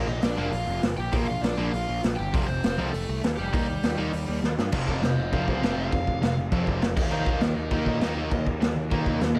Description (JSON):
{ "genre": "punk rock", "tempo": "200 BPM", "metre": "4/4", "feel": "straight", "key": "unclear", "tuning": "A4 = 441 Hz", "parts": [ { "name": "distorted electric guitar", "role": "riff", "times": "0.0-9.3 s", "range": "F2 to Eb4", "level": "-35 LUFS", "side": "equal", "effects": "overdrive" }, { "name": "overdriven semi-hollow guitar", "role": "riff", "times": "0.0-9.3 s", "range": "F2 to Eb4", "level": "-33 LUFS", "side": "equal", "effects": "none" }, { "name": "fuzz picked electric bass", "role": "bass", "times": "0.0-9.4 s", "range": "F1 to Eb3", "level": "-32 LUFS", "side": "equal", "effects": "overdrive" }, { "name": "overdriven electric guitar", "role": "melody", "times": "0.1-9.4 s", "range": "G3 to G5", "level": "-34 LUFS", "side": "equal", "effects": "none" }, { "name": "raw garage drum kit", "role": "drums", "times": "0.2-9.3 s", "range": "crash cymbal, hi-hat, kick drum, snare drum", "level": "-30 LUFS", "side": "equal", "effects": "none" } ], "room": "little or no reverb", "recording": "none", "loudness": "-26 LUFS", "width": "mono", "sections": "0.0-4.7 A section; 4.7-9.4 B section", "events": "drum fill 4.4; overdriven electric guitar solo 4.7-9.4", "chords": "0.0 Bb; 2.3 F; 3.5 Eb; 4.7 F5; 7.0 Eb5", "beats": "0.23 0.53 0.83 | 1.13 1.43 1.73 2.03 | 2.33 2.63 2.93 3.23 | 3.53 3.83 4.13 4.43 | 4.73 5.03 5.33 5.62 | 5.92 6.22 6.52 6.82 | 7.12 7.42 7.72 8.02 | 8.31 8.61 8.91 9.21" }